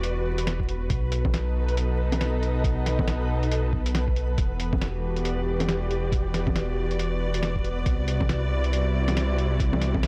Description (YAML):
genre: future garage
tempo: 138 BPM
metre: 4/4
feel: swing 60% on 16ths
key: E minor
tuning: A4 = 441 Hz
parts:
  - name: warm symphonic string section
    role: sustained chords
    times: 0.0-10.1 s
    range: B2 to D#5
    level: -32 LUFS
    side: equal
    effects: sidechain pumping
  - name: dark detuned saw bass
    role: bass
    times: 0.0-10.1 s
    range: E1 to C2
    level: -29 LUFS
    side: equal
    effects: sidechain pumping
  - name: lo-fi sampler-style drum kit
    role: drums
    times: 0.0-10.1 s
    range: bongos, hi-hat, snare drum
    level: -33 LUFS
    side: equal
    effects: none
  - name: backwards swelling texture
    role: texture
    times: 0.0-10.1 s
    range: B3 to B4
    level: -40 LUFS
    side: equal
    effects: built-in reverb
  - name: electronic kick drum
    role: drums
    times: 0.6-10.0 s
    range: none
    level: -28 LUFS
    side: equal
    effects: none
room: digital ambience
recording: dry, gritty hardware recording, vinyl crackle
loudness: -26 LUFS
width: mono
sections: 0.0-10.1 A section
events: none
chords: 0.0 Em9; 0.9 B7; 4.4 Em9; 7.9 Cmaj9#11